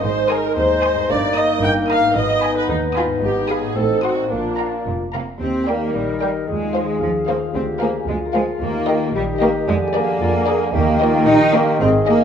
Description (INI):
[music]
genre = cinematic, playful, whimsical film cue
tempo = 112 BPM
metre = 2/4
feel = straight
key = Eb major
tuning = A4 = 440 Hz
[part]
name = warm clarinet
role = second line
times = 0.0-12.2 s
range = Eb4 to Bb4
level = -27 LUFS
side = equal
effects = none
[part]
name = mellow bassoon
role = accompaniment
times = 0.0-12.2 s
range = D3 to C4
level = -24 LUFS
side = right 1 dB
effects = none
[part]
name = rich studio viola section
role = accompaniment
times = 0.0-12.2 s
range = D4 to G5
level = -21 LUFS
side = right 1 dB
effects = none
[part]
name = mellow French horn section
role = sustained chords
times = 0.0-12.2 s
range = Ab3 to Ab4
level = -26 LUFS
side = left 4 dB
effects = none
[part]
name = concert harp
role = arpeggios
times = 0.0-12.2 s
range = G2 to F5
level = -27 LUFS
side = left 9 dB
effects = none
[part]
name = rich studio cello section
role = bass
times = 0.0-12.2 s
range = Eb2 to Eb4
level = -22 LUFS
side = right 2 dB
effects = none
[part]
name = warm studio double bass section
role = bass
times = 0.0-12.2 s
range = F1 to F2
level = -27 LUFS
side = right 3 dB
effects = none
[part]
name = rich studio violin section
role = melody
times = 0.3-12.2 s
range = D5 to Eb6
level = -28 LUFS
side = left 4 dB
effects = none
[part]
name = rich studio violin section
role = second line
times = 0.3-12.2 s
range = Ab4 to C6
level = -28 LUFS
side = left 3 dB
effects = none
[part]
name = hollow concert flute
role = second line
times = 5.7-12.2 s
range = Bb4 to Ab5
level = -25 LUFS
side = equal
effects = none
[sound]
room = wet recital hall reverb, RT60 1.4 s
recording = minimal, uncompressed stereo recording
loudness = -16 LUFS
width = side -8 dB against mid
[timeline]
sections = 0.0-5.4 A section; 5.4-12.2 B section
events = none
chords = 0.0 Ab; 1.1 Eb/G; 2.2 Abm; 3.2 Fm7b5/Ab; 3.8 Adim7; 4.3 Bb; 5.4 Eb; 6.5 Fm7/Eb; 7.5 Bb7/D; 8.6 Eb; 9.7 Bb7/F; 10.7 Eb